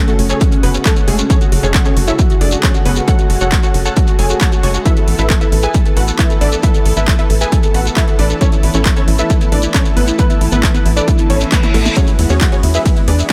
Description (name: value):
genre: uplifting trance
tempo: 135 BPM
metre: 4/4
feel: straight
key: A major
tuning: A4 = 439 Hz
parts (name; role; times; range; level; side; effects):
- unison pluck; melody; 0.0-13.3 s; G#3 to C#6; -22 LUFS; equal; sidechain pumping, tape echo
- clear grand piano; second line; 0.0-13.3 s; C#4 to C#6; -26 LUFS; equal; sidechain pumping
- analog string pad; sustained chords; 0.0-13.3 s; C#3 to A4; -26 LUFS; equal; ensemble chorus, sidechain pumping
- techno drum kit; drums; 0.1-13.3 s; handclaps, hi-hat, ride cymbal, snare drum; -24 LUFS; equal; overdrive
- shekere; percussion; 0.1-13.3 s; none; -28 LUFS; equal; none
- tight sequencer bass; bass; 0.2-13.2 s; F#1 to E2; -18 LUFS; equal; sidechain pumping
- electronic kick drum; drums; 0.4-13.3 s; none; -15 LUFS; equal; overdrive
- reverse cymbal; sound effects; 11.3-12.0 s; none; -26 LUFS; equal; none
room: little or no reverb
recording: none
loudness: -13 LUFS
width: mono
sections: 0.0-13.3 A section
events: reverse cymbal 11.3-12.0; drum fill 11.5-12.0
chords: 0.0 F#madd9; 4.9 Asus2; 12.0 Eadd9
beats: 0.41 0.86 | 1.30 1.75 2.19 2.63 | 3.08 3.52 3.97 4.41 | 4.86 5.30 5.75 6.19 | 6.63 7.08 7.52 7.97 | 8.41 8.86 9.30 9.74 | 10.19 10.63 11.08 11.52 | 11.97 12.41 12.86 13.30